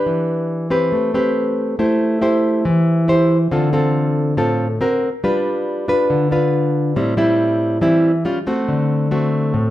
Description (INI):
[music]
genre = bossa nova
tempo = 139 BPM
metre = 4/4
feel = straight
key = A minor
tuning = A4 = 441 Hz
[part]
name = nylon-string guitar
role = solo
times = 0.0-9.7 s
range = A2 to C5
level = -15 LUFS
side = equal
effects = none
[sound]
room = light reverb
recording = band playing live in one room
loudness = -15 LUFS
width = side -14 dB against mid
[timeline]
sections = 0.0-1.8 A section; 1.8-9.7 B section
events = none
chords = 0.1 Em7; 0.9 Am9; 1.8 Am7; 3.5 Dm7; 4.8 F#; 5.2 G7; 7.0 Am7; 8.3 A7alt; 8.7 D7